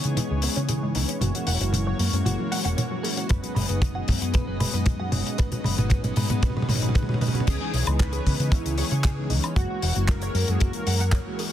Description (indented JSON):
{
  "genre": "nu-disco, nu disco",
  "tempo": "115 BPM",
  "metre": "4/4",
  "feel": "straight",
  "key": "F# mixolydian",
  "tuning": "A4 = 440 Hz",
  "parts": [
    { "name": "mellow synth brass", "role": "accompaniment", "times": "0.0-11.5 s", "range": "E3 to G#4", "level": "-32 LUFS", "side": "left 1 dB", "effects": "chorus, tape echo" },
    { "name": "lush unison pad", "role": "sustained chords", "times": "0.0-11.5 s", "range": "E3 to D#5", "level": "-35 LUFS", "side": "equal", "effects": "chorus, sidechain pumping" },
    { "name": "analog pluck", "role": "arpeggios", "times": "0.0-7.4 s", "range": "D#3 to C#4", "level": "-35 LUFS", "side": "left 2 dB", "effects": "none" },
    { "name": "hollow-body short-scale fingered electric bass", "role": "bass", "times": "0.0-11.2 s", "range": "E1 to C#3", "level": "-26 LUFS", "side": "equal", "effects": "none" },
    { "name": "damped 70s drum kit", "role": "drums", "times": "0.0-11.5 s", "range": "crash cymbal, handclaps, hi-hat, toms, woodblock", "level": "-28 LUFS", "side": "equal", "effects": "none" },
    { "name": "direct-recorded clean electric guitar", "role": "riff", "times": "0.2-11.4 s", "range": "C#4 to B5", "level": "-36 LUFS", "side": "right 3 dB", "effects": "analog chorus, low-pass filter" },
    { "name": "kick drum", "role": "drums", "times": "3.3-11.2 s", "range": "none", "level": "-22 LUFS", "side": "equal", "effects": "none" },
    { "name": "wide unison lead", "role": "melody", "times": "7.5-11.4 s", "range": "E4 to B4", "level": "-33 LUFS", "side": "left 1 dB", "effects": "ensemble chorus, tape echo" }
  ],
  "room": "light reverb, small room ambience",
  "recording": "dense, heavily limited modern master",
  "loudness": "-22 LUFS",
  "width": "side -11 dB against mid",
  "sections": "0.0-7.5 A section; 7.5-11.5 B section",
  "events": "build-up 0.0-7.5; drum fill 0.0-7.5; filter sweep on analog polysynth 0.0-7.5; drop 7.5-11.5",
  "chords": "0.0 C#m7; 1.2 F#7; 3.3 B6/F#; 7.5 C#m7; 9.6 F#7",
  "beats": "0.17 0.69 | 1.22 1.74 2.26 2.78 | 3.30 3.82 4.35 4.87 | 5.39 5.91 6.43 6.95 | 7.48 8.00 8.52 9.04 | 9.56 10.09 10.61 11.13"
}